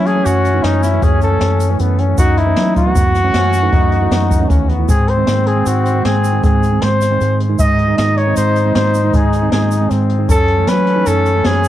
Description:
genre	progressive instrumental, band music in an uneven meter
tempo	155 BPM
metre	7/4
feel	straight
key	unclear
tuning	A4 = 440 Hz
part	mellow trumpet	melody	0.0-11.7 s	D#4 to D#5	-18 LUFS	equal	cassette tape, tape echo
part	mellow flugelhorn	second line	0.0-11.7 s	B3 to D#4	-21 LUFS	left 7 dB	cassette tape
part	tine electric piano	accompaniment	0.0-11.7 s	D#3 to F#4	-21 LUFS	right 9 dB	cassette tape
part	deep dub fingered electric bass	bass	0.0-11.7 s	D#2 to F#3	-16 LUFS	equal	none
part	jazz brush drum kit	drums	0.1-11.7 s	hi-hat, kick drum, snare drum	-17 LUFS	equal	cassette tape
part	egg shaker	percussion	0.3-11.7 s	none	-34 LUFS	right 10 dB	none
room	light reverb, small room ambience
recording	home recording on cassette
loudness	-11 LUFS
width	side -12 dB against mid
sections	0.0-11.7 A section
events	none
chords	0.0 F#m7; 4.9 G#; 10.3 F#m7

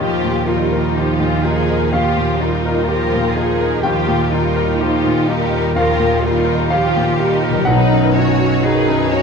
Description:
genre	cinematic, emotional film score for orchestra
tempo	62 BPM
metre	4/4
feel	rubato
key	Eb mixolydian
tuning	A4 = 440 Hz
part	warm studio violin section	melody	0.0-9.2 s	G4 to C#5	-25 LUFS	left 4 dB	none
part	rich studio violin section	second line	0.0-9.2 s	C#4 to F4	-22 LUFS	left 2 dB	none
part	bright grand piano	accompaniment	0.0-9.2 s	B1 to G5	-19 LUFS	left 3 dB	none
part	rich studio viola section	accompaniment	0.0-9.2 s	D#3 to G3	-25 LUFS	right 1 dB	none
part	concert harp	arpeggios	0.0-9.2 s	B2 to C#5	-24 LUFS	left 8 dB	none
part	rich studio cello section	bass	0.0-9.2 s	Eb4 to Bb4	-21 LUFS	right 2 dB	none
part	rich studio double bass section	bass	0.0-9.2 s	B1 to Eb2	-20 LUFS	right 6 dB	none
room	moderate scoring stage reverb, RT60 1.6 s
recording	dark, warm production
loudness	-14 LUFS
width	side -5 dB against mid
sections	0.0-9.2 A section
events	none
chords	0.0 Ebadd9; 7.7 Badd9

